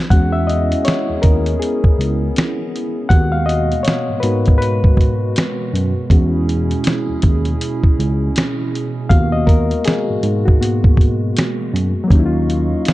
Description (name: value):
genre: lo-fi hip hop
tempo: 80 BPM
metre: 4/4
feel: swing 62% on 16ths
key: unclear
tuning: A4 = 440 Hz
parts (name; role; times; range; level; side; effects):
- reed electric piano; accompaniment; 0.0-12.9 s; F#3 to F#5; -20 LUFS; left 3 dB; cassette tape, low-pass filter
- hollow soft pad; sustained chords; 0.3-12.9 s; B2 to C#6; -24 LUFS; right 3 dB; chorus, low-pass filter
- tine electric piano; bass; 0.1-12.7 s; C#2 to G#2; -18 LUFS; equal; medium stereo tremolo
- dusty soul sampler-style drum kit; drums; 0.1-12.9 s; hi-hat, kick drum, snare drum; -14 LUFS; equal; vintage 12-bit sampler grit
room: light reverb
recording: dark, warm production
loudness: -14 LUFS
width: side -17 dB against mid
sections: 0.1-12.1 A section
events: reed electric piano solo 0.1-12.1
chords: 0.1 E6; 3.1 G#m9/D#; 6.1 E6; 9.1 G#m9/D#; 12.1 D#m9